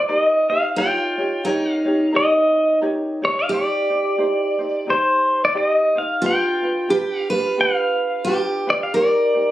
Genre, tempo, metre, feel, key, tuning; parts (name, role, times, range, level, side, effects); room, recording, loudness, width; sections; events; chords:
Hawaiian; 88 BPM; 4/4; swing 60% on 8ths; A4 = 444 Hz
picked steel-string acoustic guitar; second line; 0.0-9.5 s; Eb4 to B4; -21 LUFS; right 1 dB
ukulele; accompaniment; 0.0-9.5 s; D4 to Db5; -26 LUFS; left 1 dB
pedal steel guitar; melody; 0.1-9.5 s; C5 to G5; -19 LUFS; equal
moderate spring reverb, RT60 1.5 s, small room ambience; recorded on a phone in the room, studio ambience; -17 LUFS; side -14 dB against mid
0.0-9.5 A section
0.0 Cm7; 0.8 Eb7; 3.5 Ebmaj13; 6.2 G7; 8.9 Cm7